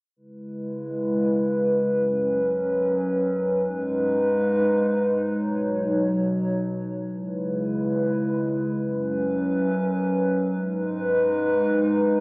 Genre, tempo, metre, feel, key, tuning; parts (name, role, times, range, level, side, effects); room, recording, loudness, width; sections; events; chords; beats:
hip hop; free time; C# minor; A4 = 440 Hz
warbly tape-like pad; sustained chords; 0.2-12.2 s; F#2 to C#5; -21 LUFS; equal; chorus, built-in reverb
moderate huge ambient reverb, RT60 5.2 s; small speaker sound; -21 LUFS; side -29 dB against mid
0.2-12.2 A section
0.2 C#m7; 1.9 F#sus4; 3.6 G#m; 5.3 Badd9; 7.1 C#m7; 8.8 F#sus4; 10.5 G#m
free time